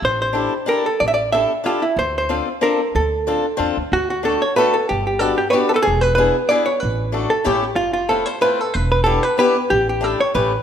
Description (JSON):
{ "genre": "musette waltz", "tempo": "186 BPM", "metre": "3/4", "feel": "swing 54% on 8ths", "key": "D minor, D major from 3.9 s", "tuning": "A4 = 442 Hz", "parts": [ { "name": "hollow-body jazz guitar", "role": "melody", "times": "0.0-10.6 s", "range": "E4 to E5", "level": "-18 LUFS", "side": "right 1 dB", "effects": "none" }, { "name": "upright bass", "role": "bass", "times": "0.0-10.6 s", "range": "E1 to E2", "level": "-24 LUFS", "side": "right 1 dB", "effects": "none" }, { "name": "picked swing-style acoustic guitar", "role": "accompaniment", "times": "0.3-10.5 s", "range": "A3 to A4", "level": "-22 LUFS", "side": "left 4 dB", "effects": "none" } ], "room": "moderate recital hall reverb, RT60 1.8 s", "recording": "minimal, uncompressed stereo recording", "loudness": "-16 LUFS", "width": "side -8 dB against mid", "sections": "0.0-3.9 A section; 3.9-10.6 B section", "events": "none", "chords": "0.0 A7sus4; 2.0 Dm7; 3.9 D; 4.9 Gmaj7; 5.9 E7; 6.8 D/A; 7.5 A7; 7.8 Fmaj7; 8.8 Em7; 9.7 A7sus4", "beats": "| 0.04 0.37 0.69 | 1.02 1.34 1.66 | 1.98 2.31 2.63 | 2.95 3.27 3.60 | 3.92 4.25 4.57 | 4.90 5.22 5.54 | 5.86 6.18 6.50 | 6.82 7.14 7.46 | 7.78 8.11 8.43 | 8.75 9.07 9.39 | 9.71 10.02 10.34" }